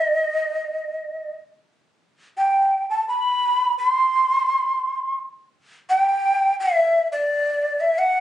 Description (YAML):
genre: andean folk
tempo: 85 BPM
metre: 3/4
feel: straight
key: unclear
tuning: A4 = 440 Hz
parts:
  - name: mellow large quena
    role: solo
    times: 0.0-8.2 s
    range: D5 to C6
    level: -18 LUFS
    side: equal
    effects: none
room: light reverb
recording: recorded on a phone in the room, club reverb, nothing above 10.4 kHz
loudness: -18 LUFS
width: side -12 dB against mid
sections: 0.0-5.9 A section; 5.9-8.2 B section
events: none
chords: none